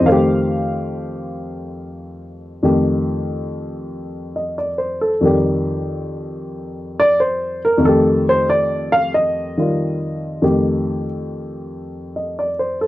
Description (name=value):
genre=solo jazz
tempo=93 BPM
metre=4/4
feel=swing 68% on 8ths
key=F mixolydian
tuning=A4 = 438 Hz
part: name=dark baby grand piano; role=solo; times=0.0-12.9 s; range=F2 to F5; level=-17 LUFS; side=equal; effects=none
room=light reverb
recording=dry, close 1970s-style studio recording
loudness=-16 LUFS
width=side -16 dB against mid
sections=0.0-5.2 A section; 5.2-12.9 B section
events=grand piano solo 5.2-12.9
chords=0.1 F9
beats=| 0.06 0.70 1.35 2.00 | 2.65 3.29 3.94 4.59 | 5.24 5.89 6.53 7.18 | 7.83 8.48 9.13 9.77 | 10.42 11.07 11.72 12.37